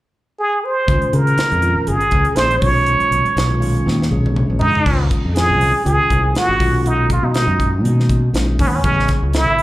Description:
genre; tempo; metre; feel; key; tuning
electric jazz fusion; 120 BPM; 4/4; swing 55% on 16ths; Db major; A4 = 441 Hz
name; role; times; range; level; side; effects
trumpet with plunger mute; melody; 0.4-9.6 s; Cb4 to Db5; -17 LUFS; right 1 dB; slapback echo, tape echo
mellow tine electric piano; accompaniment; 0.9-9.6 s; Bb2 to A4; -22 LUFS; left 1 dB; phaser
modern bright fingered electric bass; bass; 0.9-9.6 s; Ab1 to Db3; -18 LUFS; equal; none
crisp fusion drum kit; drums; 0.9-9.6 s; crash cymbal, hi-hat, kick drum, snare drum, toms; -22 LUFS; equal; none
room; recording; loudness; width
light reverb, small room ambience; live gig heard through the venue's PA, club reverb; -14 LUFS; side -16 dB against mid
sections
0.9-4.9 A section; 4.9-9.6 B section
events
drum fill 3.9-4.9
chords
0.0 N.C.; 0.9 Dbadd9; 2.6 Cbmaj9; 4.9 Dbmaj9; 6.6 Cbmaj9; 8.8 Amaj9

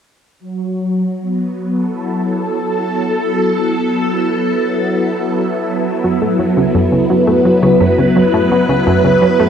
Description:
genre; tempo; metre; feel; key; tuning
ambient, sequencer-driven space music; 85 BPM; 4/4; straight; F# minor; A4 = 440 Hz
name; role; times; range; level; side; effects
phased string machine; sustained chords; 0.4-9.5 s; F#3 to B4; -13 LUFS; equal; ensemble chorus, phaser
analog pluck; riff; 6.0-9.5 s; F#2 to A3; -15 LUFS; equal; chorus, analog delay
room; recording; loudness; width
wet plate reverb, RT60 3.6 s; none; -12 LUFS; side -8 dB against mid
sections
0.4-9.5 A section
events
filter sweep on string machine 0.4-9.5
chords
0.4 F#m

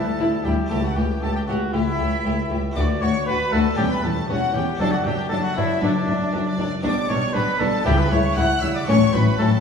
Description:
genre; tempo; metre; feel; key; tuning
classical, baroque-style concerto movement with solo episodes; 117 BPM; 4/4; straight; D major; A4 = 442 Hz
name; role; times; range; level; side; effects
warm symphonic violin section; melody; 0.0-9.6 s; D5 to F#6; -30 LUFS; left 2 dB; none
warm trumpet; melody; 0.0-9.5 s; D4 to F#5; -25 LUFS; equal; none
rich chamber violin section; second line; 0.0-9.5 s; C#4 to G4; -26 LUFS; left 1 dB; none
harpsichord; accompaniment; 0.0-9.6 s; C#2 to A4; -30 LUFS; left 1 dB; none
warm studio viola section; accompaniment; 0.0-9.5 s; F#3 to A3; -28 LUFS; left 2 dB; none
warm chamber cello section; bass; 0.2-9.5 s; C#2 to C#3; -25 LUFS; left 2 dB; none
warm studio double bass section; bass; 0.2-9.5 s; E1 to D2; -26 LUFS; equal; none
room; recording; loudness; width
wet recital hall reverb, RT60 1.7 s; heard from further back in the room; -18 LUFS; side -6 dB against mid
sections
0.0-9.6 A section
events
none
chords
0.0 Em7/D; 0.7 A7/C#; 2.8 D; 3.8 A7/E; 4.8 D/F#; 6.8 G/B; 7.9 C#dim; 8.9 F#m/A

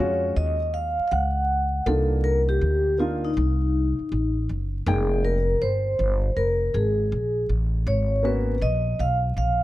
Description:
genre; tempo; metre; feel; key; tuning
hip hop; 80 BPM; 4/4; swing 66% on 16ths; unclear; A4 = 441 Hz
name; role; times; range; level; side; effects
vibraphone with medium mallets; melody; 0.0-9.6 s; Eb4 to Gb5; -25 LUFS; equal; none
dark upright piano; accompaniment; 0.0-8.5 s; Ab3 to G5; -29 LUFS; equal; none
upright bass; bass; 0.0-9.6 s; F1 to F2; -24 LUFS; equal; none
room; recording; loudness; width
small room ambience; vinyl crackle; -21 LUFS; side -16 dB against mid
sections
0.0-9.6 A section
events
none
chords
0.0 Ebm11; 1.9 Cm11; 4.9 Fm11; 7.9 Abm11

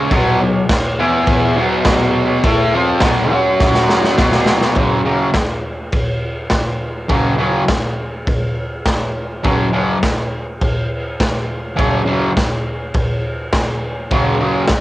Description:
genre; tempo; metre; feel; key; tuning
garage rock duo or trio; 103 BPM; 4/4; straight; unclear; A4 = 444 Hz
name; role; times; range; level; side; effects
fuzz guitar; riff; 0.0-14.6 s; F#2 to A4; -15 LUFS; equal; distortion, cassette tape
raw garage drum kit; drums; 0.1-14.8 s; crash cymbal, kick drum, snare drum; -17 LUFS; equal; cassette tape
room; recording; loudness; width
light reverb, studio reverb; home recording on cassette; -14 LUFS; side -16 dB against mid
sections
0.0-4.8 A section; 4.8-14.8 B section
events
drum fill 3.6-4.8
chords
0.1 B5; 1.0 E5; 1.6 B5; 3.3 F#5; 4.2 B5; 4.8 F#5

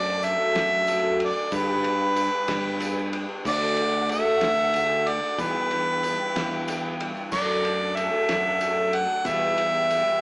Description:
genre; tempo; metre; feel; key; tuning
folk rock and heartland rock; 62 BPM (dotted quarters); 6/8; straight; unclear; A4 = 443 Hz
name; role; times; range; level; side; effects
clear harmonica; melody; 0.0-10.2 s; B4 to F#5; -23 LUFS; equal; none
picked twelve-string acoustic guitar; accompaniment; 0.0-10.2 s; E2 to G4; -30 LUFS; equal; none
warm studio string section; sustained chords; 0.0-10.2 s; E3 to F#5; -36 LUFS; equal; none
modern bright fingered electric bass; bass; 0.0-10.0 s; D2 to G2; -32 LUFS; equal; none
cloth-damped thuddy drum kit; drums; 0.2-10.1 s; crash cymbal, kick drum, ride cymbal, snare drum; -31 LUFS; equal; none
tambourine; percussion; 0.2-10.1 s; none; -45 LUFS; left 2 dB; none
room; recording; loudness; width
moderate large studio reverb, RT60 1.1 s; band playing live in one room, small speaker sound; -21 LUFS; side -26 dB against mid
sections
0.0-10.2 A section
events
none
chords
0.0 D/F#; 1.5 G; 3.4 D; 5.4 Em7; 7.3 D/F#; 9.3 Em

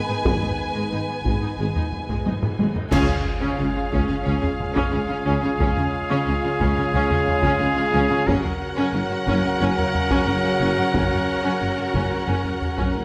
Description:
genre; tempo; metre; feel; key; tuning
cinematic, epic orchestral film score; 90 BPM; 4/4; straight; unclear; A4 = 443 Hz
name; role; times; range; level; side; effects
warm symphonic violin section; melody; 0.0-13.0 s; F5 to Ab5; -34 LUFS; equal; none
warm symphonic violin section; second line; 0.0-13.0 s; Db4 to Cb5; -34 LUFS; equal; none
warm symphonic viola section; accompaniment; 0.0-13.0 s; Ab3 to Eb4; -33 LUFS; equal; none
clear trombone section; sustained chords; 0.0-13.0 s; Db3 to Ab3; -33 LUFS; equal; none
dark French horn section; sustained chords; 0.0-13.0 s; Cb4 to Gb4; -33 LUFS; equal; none
dark symphonic cello section; bass; 0.1-13.0 s; Gb2 to Db3; -31 LUFS; equal; none
warm symphonic double bass section; bass; 0.2-13.0 s; Gb1 to Db2; -31 LUFS; equal; none
dark tuba; bass; 0.3-13.0 s; Gb1 to Db2; -32 LUFS; equal; none
taiko ensemble; drums; 0.3-13.0 s; none; -28 LUFS; equal; none
cymbal swell, clash cymbals and concert bass drum; percussion; 0.3-4.2 s; none; -36 LUFS; equal; none
warm symphonic string section; sustained chords; 2.9-13.0 s; Db4 to Ab5; -33 LUFS; equal; none
warm trumpet; stabs; 2.9-13.0 s; Ab4 to Bb4; -29 LUFS; equal; none
impact; sound effects; 3.4-5.6 s; none; barely audible; none; none
room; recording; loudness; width
moderate scoring stage reverb, RT60 1.6 s; none; -22 LUFS; mono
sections
0.0-2.9 A section; 2.9-13.0 A section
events
drum fill 2.3-2.9; band accent 2.9-3.6; impact 2.9-5.6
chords
0.0 Abm; 2.9 Db; 8.3 Gb

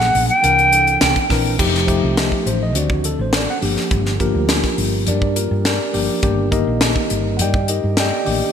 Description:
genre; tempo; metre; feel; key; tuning
electric jazz fusion; 104 BPM; 4/4; straight; G minor; A4 = 441 Hz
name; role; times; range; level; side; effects
hollow concert flute; melody; 0.0-1.3 s; F#5 to G5; -15 LUFS; equal; digital delay
tine electric piano; accompaniment; 0.0-8.5 s; Eb3 to G5; -20 LUFS; left 2 dB; medium stereo tremolo
woody fretless electric bass; bass; 0.0-8.4 s; F1 to G2; -21 LUFS; right 1 dB; lush chorus
crisp fusion drum kit; drums; 0.0-8.4 s; crash cymbal, hi-hat, kick drum, snare drum; -20 LUFS; equal; gated reverb
room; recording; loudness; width
moderate lush hall reverb, RT60 3.1 s; bright 1980s-style digital production; -15 LUFS; side -8 dB against mid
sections
0.0-1.6 A section; 1.6-8.5 B section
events
none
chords
0.4 C9; 1.6 F9; 2.8 D7b9; 3.6 Gm7; 6.2 Ebmaj7/G

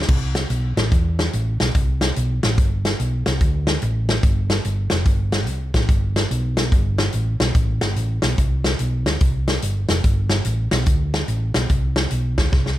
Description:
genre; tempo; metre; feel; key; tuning
uptempo gospel; 145 BPM; 4/4; swing 65% on 8ths; C major; A4 = 440 Hz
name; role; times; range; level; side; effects
hollow-body short-scale fingered electric bass; bass; 0.0-12.8 s; F1 to E2; -21 LUFS; equal; none
natural country drum kit; drums; 0.0-12.8 s; crash cymbal, hi-hat, kick drum, snare drum; -20 LUFS; equal; none
room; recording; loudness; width
little or no reverb; none; -18 LUFS; side -14 dB against mid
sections
0.1-12.8 A section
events
drum fill 12.5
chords
none

